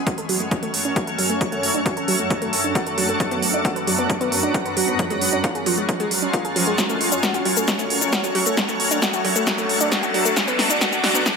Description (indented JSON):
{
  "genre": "uplifting trance",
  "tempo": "134 BPM",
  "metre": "4/4",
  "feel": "straight",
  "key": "F# minor",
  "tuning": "A4 = 445 Hz",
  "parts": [
    { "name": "shimmering ambient pad", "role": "sustained chords", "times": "0.0-11.4 s", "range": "F#2 to C#5", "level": "-23 LUFS", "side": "equal", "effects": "chorus, built-in reverb, sidechain pumping" },
    { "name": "analog pluck", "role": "arpeggios", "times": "0.1-11.3 s", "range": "E#3 to B4", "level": "-25 LUFS", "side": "right 1 dB", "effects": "chorus, sidechain pumping, ping-pong delay" },
    { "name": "big-room dance drum kit", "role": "drums", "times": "0.1-11.3 s", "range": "hi-hat, shaker, snare drum", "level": "-22 LUFS", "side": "equal", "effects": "overdrive" },
    { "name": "electronic kick drum", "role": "drums", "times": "0.1-11.3 s", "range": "none", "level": "-26 LUFS", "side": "left 1 dB", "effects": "overdrive, high-pass filter on kick, high-pass filter on room" },
    { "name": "riser", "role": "sound effects", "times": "8.4-11.4 s", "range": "none", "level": "-27 LUFS", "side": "equal", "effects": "none" }
  ],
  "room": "moderate digital room reverb, RT60 1.0 s",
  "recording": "high-pass filter",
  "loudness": "-18 LUFS",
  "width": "side -5 dB against mid",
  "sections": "0.0-11.4 A section",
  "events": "build-up 0.0-11.4; filter sweep on synth pluck 0.0-11.4; drum fill 6.8-11.4; riser 8.4-11.4",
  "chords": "0.0 F#m; 1.4 D/F#; 3.2 Bm/F#; 5.0 C#/F#; 6.8 F#m; 8.6 D/F#; 10.4 Bm/F#"
}